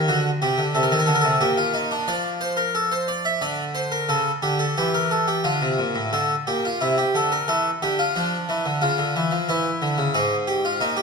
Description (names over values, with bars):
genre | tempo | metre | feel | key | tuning
classical, baroque-style two-part invention for harpsichord | 90 BPM | 3/4 | straight | unclear | A4 = 440 Hz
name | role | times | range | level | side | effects
harpsichord | solo | 0.0-11.0 s | Ab2 to E5 | -20 LUFS | equal | none
room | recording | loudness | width
wet recital hall reverb, RT60 1.6 s | minimal, uncompressed stereo recording | -20 LUFS | side -4 dB against mid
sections
0.0-6.1 A section; 6.1-11.0 B section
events
none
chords
0.1 D7; 1.4 Gm/Bb; 2.1 Dm/F; 3.4 Bbadd9/D; 4.1 A7/C#; 5.4 Dm; 7.5 Dmadd9; 9.5 C#m; 10.1 Fm/Ab